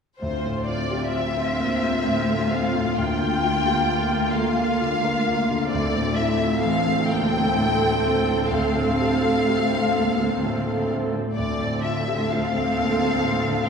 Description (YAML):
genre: cinematic, emotional film score for orchestra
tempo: 43 BPM (dotted quarters)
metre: 6/8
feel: rubato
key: D minor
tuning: A4 = 440 Hz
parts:
  - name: rich studio violin section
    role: melody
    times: 0.2-13.7 s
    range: C5 to G5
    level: -25 LUFS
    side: left 3 dB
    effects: none
  - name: clear concert grand piano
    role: accompaniment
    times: 0.2-13.7 s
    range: D2 to Bb4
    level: -26 LUFS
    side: left 1 dB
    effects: none
  - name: warm studio viola section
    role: accompaniment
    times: 0.2-13.7 s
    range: Bb3 to A4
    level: -26 LUFS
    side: right 2 dB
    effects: none
  - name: rich studio cello section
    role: bass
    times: 0.2-13.7 s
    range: D2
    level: -27 LUFS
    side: right 1 dB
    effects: none
room: wet concert hall reverb, RT60 1.7 s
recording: heard from further back in the room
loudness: -20 LUFS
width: side -6 dB against mid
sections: 0.2-13.7 A section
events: none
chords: 0.2 Dm7; 3.0 Gm7/D; 5.7 C6/D; 8.5 Fadd9/D; 11.4 Dm7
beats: | 0.20 1.60 | 2.96 4.33 | 5.71 7.08 | 8.50 9.94 | 11.38 12.77